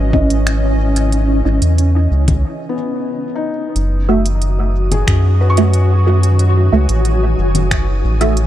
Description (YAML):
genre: ambient dub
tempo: 91 BPM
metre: 4/4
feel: straight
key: F# dorian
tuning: A4 = 440 Hz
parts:
  - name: granular cloud pad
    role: sustained chords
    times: 0.0-8.5 s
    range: C#4 to G#5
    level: -21 LUFS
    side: equal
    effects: built-in reverb
  - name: felt-muted upright piano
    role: arpeggios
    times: 0.0-8.5 s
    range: B3 to C#6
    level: -25 LUFS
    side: left 4 dB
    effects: dub echo
  - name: round analog bass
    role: bass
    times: 0.0-8.5 s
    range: F#1 to F#2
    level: -13 LUFS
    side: equal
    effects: none
  - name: wind-like tuned noise texture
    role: texture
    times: 0.0-8.5 s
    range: D#3 to D#6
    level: -29 LUFS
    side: equal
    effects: built-in reverb
  - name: filtered dub chord stab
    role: stabs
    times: 0.1-8.3 s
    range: A3 to E5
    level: -20 LUFS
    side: right 2 dB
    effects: phaser, ensemble chorus, cassette tape, dub echo
  - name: electronic kick drum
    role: drums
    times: 0.1-7.8 s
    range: none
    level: -18 LUFS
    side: equal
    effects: studio reverb
  - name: organic electronic drum kit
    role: drums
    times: 0.3-8.5 s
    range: congas, finger snaps, hi-hat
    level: -22 LUFS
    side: left 2 dB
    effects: studio reverb, dub echo
room: digital ambience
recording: none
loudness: -12 LUFS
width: side -12 dB against mid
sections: 0.0-3.8 A section; 3.8-8.5 B section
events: break 2.4-3.8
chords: 0.0 C#madd9; 3.8 F#m7